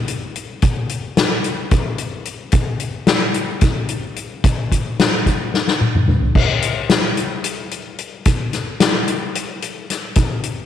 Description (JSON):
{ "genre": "rock", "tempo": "220 BPM (eighths)", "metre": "7/8", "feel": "straight", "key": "none", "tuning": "none", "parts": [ { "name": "soft-mallet drum kit", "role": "drums", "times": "0.1-10.6 s", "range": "crash cymbal, hi-hat, kick drum, snare drum, toms", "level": "-16 LUFS", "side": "left 1 dB", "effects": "none" } ], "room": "moderate echo chamber reverb, RT60 2.1 s", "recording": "1960s-style stereo", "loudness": "-16 LUFS", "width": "side -10 dB against mid", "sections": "0.0-6.4 A section; 6.4-10.7 B section", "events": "drum fill 5.5-6.4", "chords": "none" }